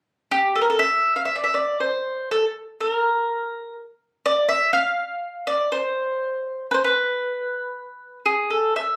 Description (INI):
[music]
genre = fado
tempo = 61 BPM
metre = 2/4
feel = uneven beats, rubato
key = unclear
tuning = A4 = 440 Hz
[part]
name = mandolin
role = solo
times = 0.3-9.0 s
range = G4 to F5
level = -23 LUFS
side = equal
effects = none
[sound]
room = moderate studio reverb, RT60 0.6 s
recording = recorded on a phone in the room, club reverb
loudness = -23 LUFS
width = mono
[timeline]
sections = 0.0-1.3 A section; 1.3-9.0 B section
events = none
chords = none